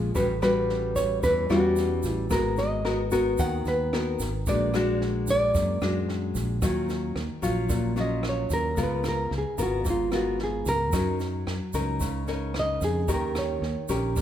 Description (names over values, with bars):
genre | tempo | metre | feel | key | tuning
bossa nova | 111 BPM | 4/4 | straight | Eb minor | A4 = 439 Hz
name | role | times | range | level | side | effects
nylon-string guitar | melody | 0.0-13.9 s | F4 to Gb5 | -27 LUFS | equal | none
nylon-string guitar | accompaniment | 0.0-14.2 s | Ab2 to Bb4 | -28 LUFS | left 2 dB | none
fingered electric bass | bass | 0.0-14.2 s | Ab1 to F#2 | -30 LUFS | right 1 dB | none
compact cocktail drum kit | drums | 0.2-14.2 s | kick drum, rim click, snare drum | -33 LUFS | right 1 dB | none
egg shaker | percussion | 0.2-14.2 s | none | -42 LUFS | right 4 dB | none
room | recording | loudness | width
moderate recital hall reverb, RT60 1.5 s | recorded in a church or concert hall | -24 LUFS | side -10 dB against mid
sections
0.0-6.6 A section; 6.6-14.2 B section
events
nylon-string guitar solo 6.6-14.2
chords
0.2 A13; 2.3 Abm9; 4.5 Bbaug7; 6.6 Ebm9; 8.8 Db6; 10.9 Gb6; 13.1 Eb7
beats
| 0.15 0.69 1.23 1.77 | 2.31 2.85 3.38 3.92 | 4.46 5.00 5.54 6.08 | 6.62 7.16 7.70 8.23 | 8.77 9.31 9.85 10.39 | 10.93 11.47 12.01 12.55 | 13.09 13.62 14.16